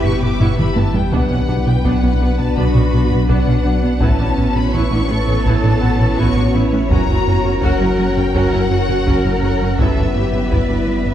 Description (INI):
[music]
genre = cinematic, hybrid orchestral and electronic film score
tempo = 83 BPM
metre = 4/4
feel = straight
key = B minor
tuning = A4 = 440 Hz
[part]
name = rich symphonic violin section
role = melody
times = 0.0-11.1 s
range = D5 to D6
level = -26 LUFS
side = left 3 dB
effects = none
[part]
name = rich symphonic violin section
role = second line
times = 0.0-11.1 s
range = A#4 to E5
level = -27 LUFS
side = left 2 dB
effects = none
[part]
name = rich symphonic viola section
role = accompaniment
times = 0.0-11.1 s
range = B3 to F#4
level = -25 LUFS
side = right 2 dB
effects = none
[part]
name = dark French horn section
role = sustained chords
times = 0.0-11.1 s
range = B3 to F#4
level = -23 LUFS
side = left 3 dB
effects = none
[part]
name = glassy FM pad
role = sustained chords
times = 0.0-11.1 s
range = F#3 to E5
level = -24 LUFS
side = right 1 dB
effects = ensemble chorus, built-in reverb
[part]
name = round analog bass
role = riff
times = 0.0-11.1 s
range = F#2 to B3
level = -21 LUFS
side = right 1 dB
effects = none
[part]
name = rich symphonic double bass section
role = bass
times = 0.0-11.1 s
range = F#1 to B1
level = -23 LUFS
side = right 2 dB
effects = none
[part]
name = soft dub sub bass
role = bass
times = 0.0-11.1 s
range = F#1 to B1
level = -21 LUFS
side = equal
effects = none
[part]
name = warm symphonic cello section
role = bass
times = 0.0-11.1 s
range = C#4 to B4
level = -25 LUFS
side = right 2 dB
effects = none
[part]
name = taiko ensemble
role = drums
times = 0.0-11.1 s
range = none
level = -22 LUFS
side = equal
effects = none
[part]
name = warm grand piano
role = texture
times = 0.0-11.1 s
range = B3 to F#5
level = -36 LUFS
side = left 2 dB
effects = none
[sound]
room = wet concert hall reverb, RT60 2.5 s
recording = dark, warm production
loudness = -13 LUFS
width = side -11 dB against mid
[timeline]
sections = 0.0-11.1 A section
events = drum fill 0.4-1.1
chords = 0.0 Em/G; 1.1 Bm; 4.0 Aadd9; 6.9 F#; 9.8 Em/G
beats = 0.40 | 1.12 1.84 2.56 3.29 | 4.01 4.73 5.46 6.18 | 6.90 7.63 8.35 9.07 | 9.79 10.52